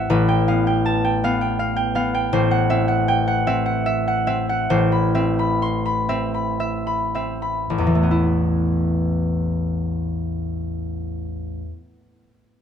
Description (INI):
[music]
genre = classical, solo harp piece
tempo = 52-82 BPM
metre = 3/4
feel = rubato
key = A minor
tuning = A4 = 441 Hz
[part]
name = concert harp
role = solo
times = 0.0-11.8 s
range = A1 to C6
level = -18 LUFS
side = equal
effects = none
[sound]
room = moderate stone room reverb, RT60 1.3 s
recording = dark, warm production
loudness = -18 LUFS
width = side -8 dB against mid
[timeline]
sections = 0.0-7.7 A section; 7.7-10.8 B section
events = slowing down 1.2-7.7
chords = 0.1 G9/A; 2.3 Am6; 4.7 Amadd9